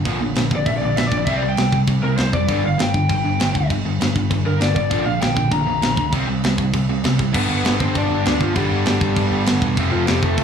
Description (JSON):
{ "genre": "punk rock", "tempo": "198 BPM", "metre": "4/4", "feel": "straight", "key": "unclear", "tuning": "A4 = 441 Hz", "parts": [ { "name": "distorted electric guitar", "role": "riff", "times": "0.0-10.4 s", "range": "F2 to D4", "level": "-21 LUFS", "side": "right 1 dB", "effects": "distortion" }, { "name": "overdriven picked electric bass", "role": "bass", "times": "0.0-10.4 s", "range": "E1 to D2", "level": "-22 LUFS", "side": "equal", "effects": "none" }, { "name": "tight metal drum kit", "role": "drums", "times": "0.1-10.4 s", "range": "crash cymbal, kick drum, snare drum", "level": "-22 LUFS", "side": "equal", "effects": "none" }, { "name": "lead guitar through a small cranked amp", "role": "melody", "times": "0.6-10.4 s", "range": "F3 to Bb5", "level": "-22 LUFS", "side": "left 2 dB", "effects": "overdrive" } ], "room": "little or no reverb", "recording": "studio reverb", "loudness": "-16 LUFS", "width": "side -7 dB against mid", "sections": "0.0-7.3 A section; 7.3-10.4 B section", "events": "lead electric guitar solo 0.0-7.3", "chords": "0.1 Bb; 1.3 C5; 2.5 G5; 4.9 Bb; 6.1 C5; 7.3 G; 9.8 F", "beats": "| 0.06 0.36 0.67 0.97 | 1.27 1.58 1.88 2.19 | 2.49 2.79 3.10 3.40 | 3.70 4.01 4.31 4.61 | 4.92 5.22 5.53 5.83 | 6.13 6.44 6.74 7.04 | 7.35 7.65 7.96 8.26 | 8.56 8.87 9.17 9.47 | 9.78 10.08 10.38" }